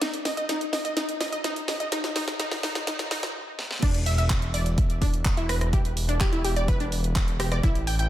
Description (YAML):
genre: progressive house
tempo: 126 BPM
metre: 4/4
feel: straight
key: E minor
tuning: A4 = 438 Hz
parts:
  - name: wide unison pluck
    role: arpeggios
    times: 0.0-8.0 s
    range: D4 to G6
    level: -30 LUFS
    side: equal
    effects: sidechain pumping, dub echo
  - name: house drum kit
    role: drums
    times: 0.0-8.1 s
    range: crash cymbal, handclaps, hi-hat, rim click, snare drum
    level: -30 LUFS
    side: equal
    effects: none
  - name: fat analog bass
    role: bass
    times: 3.8-8.1 s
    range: E1 to A1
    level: -26 LUFS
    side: equal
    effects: sidechain pumping
  - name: electronic kick drum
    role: drums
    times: 3.8-7.7 s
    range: none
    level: -24 LUFS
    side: equal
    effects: none
room: light reverb, digital ambience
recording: high-pass filter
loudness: -23 LUFS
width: side -13 dB against mid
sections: 0.0-3.8 A section; 3.8-8.1 B section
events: build-up 0.0-3.8; drum fill 0.0-3.3, 3.6; filter sweep 0.0-3.8; stop 3.3-3.8; drop 3.8-8.1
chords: 0.0 N.C.; 3.8 E7(no3)